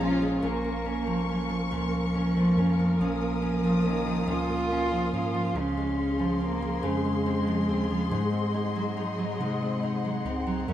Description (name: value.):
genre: six-eight pop ballad.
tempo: 47 BPM (dotted quarters).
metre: 6/8.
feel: straight.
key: Bb minor.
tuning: A4 = 441 Hz.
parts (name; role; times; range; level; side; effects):
dark cello; melody; 0.0-10.7 s; Eb3 to F4; -28 LUFS; equal; plate reverb, analog delay.
dark chamber violin section; second line; 0.0-0.4, 10.7 s; F4 to Gb4; -38 LUFS; equal; plate reverb, analog delay.
nylon-string guitar; accompaniment; 0.0-10.7 s; Gb2 to Eb4; -29 LUFS; right 1 dB; none.
warm studio string section; sustained chords; 0.0-10.7 s; Ab4 to Eb6; -34 LUFS; left 2 dB; plate reverb.
mellow tine electric piano; bass; 0.0-10.7 s; Bb1 to C3; -35 LUFS; equal; auto-pan.
room: wet studio reverb, RT60 0.6 s.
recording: rough home demo mix, lossy compression artefacts.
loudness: -25 LUFS.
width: side -11 dB against mid.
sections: 0.4-10.7 A section.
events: none.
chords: 0.4 Bbm; 5.6 Dbmaj7; 8.1 Ab7.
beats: | 0.43 1.72 | 3.00 4.28 | 5.56 6.84 | 8.12 9.41 | 10.69.